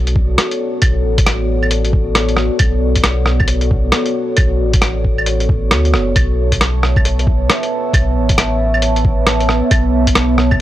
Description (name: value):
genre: future garage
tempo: 135 BPM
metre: 4/4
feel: swing 62% on 16ths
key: B minor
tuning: A4 = 440 Hz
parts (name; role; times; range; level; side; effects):
- deep dark ambient pad; sustained chords; 0.0-10.6 s; B3 to A5; -18 LUFS; equal; chorus, built-in reverb, sidechain pumping
- warm sub bass; bass; 0.0-10.6 s; F#1 to D2; -16 LUFS; equal; transformer saturation, sidechain pumping
- lo-fi sampler-style drum kit; drums; 0.1-10.6 s; claves, hi-hat, rim click; -16 LUFS; equal; none
- electronic kick drum; drums; 0.2-10.6 s; none; -15 LUFS; equal; none
room: little or no reverb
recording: dry, gritty hardware recording, cassette tape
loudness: -12 LUFS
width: side -14 dB against mid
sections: 0.0-10.6 A section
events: none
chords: 0.0 Bm7; 6.2 Aadd9